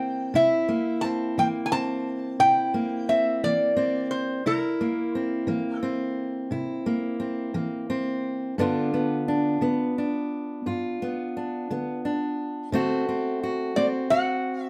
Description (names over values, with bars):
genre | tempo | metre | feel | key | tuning
acoustic country blues, solo or duo | 58 BPM (dotted quarters) | 12/8 | straight | unclear | A4 = 440 Hz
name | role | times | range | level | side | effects
lap resonator guitar | melody | 0.0-6.5, 13.8-14.7 s | Bb4 to A5 | -26 LUFS | equal | none
fingerpicked steel-string acoustic guitar | accompaniment | 0.0-14.7 s | G2 to F#4 | -28 LUFS | equal | none
room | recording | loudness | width
wet studio reverb, RT60 0.6 s | heard from further back in the room | -26 LUFS | mono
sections
0.0-14.7 A section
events
none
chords
0.0 C7; 8.6 G7; 12.7 D7